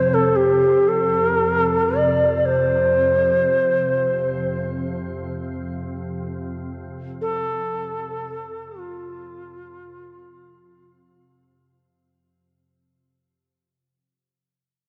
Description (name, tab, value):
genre	world meditative, free-time meditation music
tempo	free time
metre	none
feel	none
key	F major pentatonic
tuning	A4 = 442 Hz
part	bright reedy low xiao	melody	0.0-10.9 s	F4 to D5	-22 LUFS	equal	shimmer reverb, delay
part	soft additive organ-like pad	drone	0.0-13.0 s	F2 to C3	-29 LUFS	equal	ensemble chorus, built-in reverb
room	wet cathedral reverb, RT60 4.6 s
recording	worn, warbling old tape, cassette tape, warbly pitch drift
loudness	-21 LUFS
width	mono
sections	0.0-12.9 A section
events	fade-out 0.0-12.9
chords	none